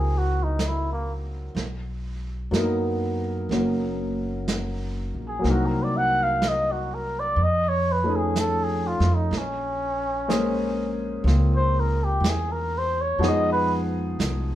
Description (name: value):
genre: jazz ballad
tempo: 62 BPM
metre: 4/4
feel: swing 69% on 8ths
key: Bb minor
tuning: A4 = 440 Hz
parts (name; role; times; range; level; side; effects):
- trumpet with cup mute; melody; 0.0-13.7 s; Bb3 to Gb5; -25 LUFS; equal; none
- warm grand piano; accompaniment; 0.0-14.6 s; F3 to C5; -27 LUFS; left 1 dB; none
- upright bass; bass; 0.0-14.6 s; F#1 to F#2; -26 LUFS; equal; none
- vintage brush drum kit; drums; 0.6-14.6 s; brushed snare drum, hi-hat, snare drum; -29 LUFS; right 3 dB; none
room: moderate studio reverb, RT60 0.9 s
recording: band playing live in one room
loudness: -22 LUFS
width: side -12 dB against mid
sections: 0.0-14.6 A section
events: muted trumpet solo 0.0-14.6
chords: 0.0 Gb13; 1.6 Bmaj7; 5.4 Cm7b5; 7.4 F7alt; 9.3 Bbm9; 13.2 Fm7b5